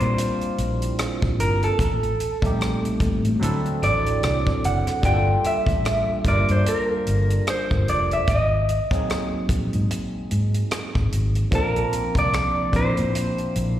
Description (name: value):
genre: R&B, neo-soul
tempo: 74 BPM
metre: 4/4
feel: swing 58% on 16ths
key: unclear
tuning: A4 = 440 Hz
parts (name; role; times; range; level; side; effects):
- electric guitar through a small old amp; melody; 0.0-13.8 s; A4 to G5; -24 LUFS; equal; slapback echo
- barky tine electric piano; accompaniment; 0.0-13.8 s; F3 to A5; -27 LUFS; right 1 dB; overdrive, phaser, slapback echo
- vintage muted fingered electric bass; bass; 0.0-13.8 s; F1 to Bb2; -22 LUFS; equal; none
- compact cocktail drum kit; drums; 0.0-13.8 s; hi-hat, kick drum, rim click; -26 LUFS; equal; none
room: small room ambience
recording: live gig heard through the venue's PA, recital hall reverb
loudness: -20 LUFS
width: side -12 dB against mid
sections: 0.0-13.8 A section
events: none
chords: 0.0 Bb6; 1.8 Am7b5; 3.4 D7; 5.0 Gm9; 8.3 G#9; 11.5 Bbmaj7